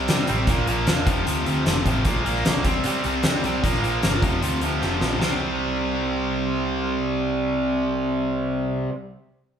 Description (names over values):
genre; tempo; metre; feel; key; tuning
hard rock; 152 BPM; 4/4; straight; unclear; A4 = 440 Hz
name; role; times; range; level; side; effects
distorted electric guitar; riff; 0.0-8.9 s; F2 to C4; -26 LUFS; left 5 dB; overdrive
distorted electric guitar; riff; 0.0-8.9 s; F2 to C4; -25 LUFS; right 5 dB; distortion
overdriven picked electric bass; bass; 0.0-8.9 s; E1 to C3; -29 LUFS; equal; none
huge arena drum kit; drums; 0.1-5.3 s; hi-hat, kick drum, snare drum; -24 LUFS; equal; none
room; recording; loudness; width
wet large studio reverb, RT60 0.9 s; band playing live in one room; -20 LUFS; side -8 dB against mid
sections
0.0-5.2 A section; 5.2-8.4 B section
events
drum fill 4.8-5.2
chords
0.5 Bb5; 1.1 F; 2.0 Bb5; 2.6 C5; 3.6 Bb5; 4.2 F5; 5.2 C5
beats
0.08 | 0.48 0.87 1.26 1.66 | 2.05 2.44 2.84 3.23 | 3.63 4.02 4.42 4.81 | 5.21 5.60 5.99 6.39 | 6.78 7.18 7.57 7.97